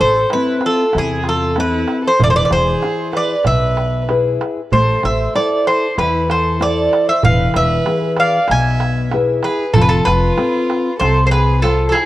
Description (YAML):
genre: greek folk, Greek bouzouki band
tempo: 95 BPM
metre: 4/4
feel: straight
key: A harmonic minor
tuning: A4 = 439 Hz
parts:
  - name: Greek bouzouki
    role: melody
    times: 0.0-12.1 s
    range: G#4 to G#5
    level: -16 LUFS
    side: equal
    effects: none
  - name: rich violin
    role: second line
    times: 0.0-12.1 s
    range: E4 to E5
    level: -24 LUFS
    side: right 3 dB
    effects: none
  - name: fingerpicked steel-string acoustic guitar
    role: accompaniment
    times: 0.0-12.1 s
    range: B2 to E5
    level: -20 LUFS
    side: left 3 dB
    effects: none
  - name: upright bass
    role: bass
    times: 0.0-11.9 s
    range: E1 to E2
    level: -19 LUFS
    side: equal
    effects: none
  - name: darbuka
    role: percussion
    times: 0.3-12.1 s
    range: none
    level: -20 LUFS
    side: right 3 dB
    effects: none
room: light reverb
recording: worn, warbling old tape, cassette tape, warbly pitch drift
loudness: -13 LUFS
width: side -15 dB against mid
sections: 0.0-12.1 A section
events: none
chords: 0.0 Am; 2.2 E; 4.7 Am; 7.2 E; 9.8 F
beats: 0.31 0.94 1.57 | 2.20 2.83 3.46 4.09 | 4.72 5.35 5.98 6.61 | 7.24 7.87 8.50 9.13 | 9.76 10.39 11.02 11.65